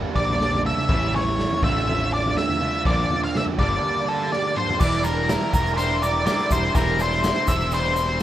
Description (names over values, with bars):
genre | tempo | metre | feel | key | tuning
indie rock | 123 BPM | 4/4 | straight | unclear | A4 = 438 Hz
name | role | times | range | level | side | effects
biting overdriven guitar | riff | 0.0-8.2 s | G2 to C5 | -27 LUFS | right 7 dB | analog chorus
twangy electric guitar | riff | 0.0-8.2 s | G2 to C5 | -33 LUFS | left 6 dB | none
fuzz picked electric bass | bass | 0.0-8.2 s | E1 to Bb1 | -26 LUFS | equal | overdrive
octave-fuzz lead guitar | melody | 0.2-8.2 s | A4 to F5 | -23 LUFS | left 2 dB | distortion, tape echo
raw garage drum kit | drums | 0.2-8.2 s | crash cymbal, hi-hat, kick drum, snare drum, toms | -26 LUFS | equal | none
analog string pad | sustained chords | 4.8-8.2 s | G4 to D6 | -36 LUFS | left 1 dB | none
egg shaker | percussion | 4.8-8.2 s | none | -40 LUFS | left 4 dB | none
room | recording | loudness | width
light reverb | rough home demo mix | -19 LUFS | side -12 dB against mid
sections
0.0-4.8 A section; 4.8-8.2 B section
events
drum fill 4.3-4.8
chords
0.0 Gmadd9; 0.9 A7; 1.6 Dm7/A; 2.9 Bbmaj7; 3.6 Gmadd9; 4.8 Em7b5; 6.8 Cadd9/E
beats
0.41 | 0.90 1.39 1.88 2.37 | 2.86 3.35 3.83 4.32 | 4.81 5.30 5.78 6.27 | 6.75 7.24 7.72 8.21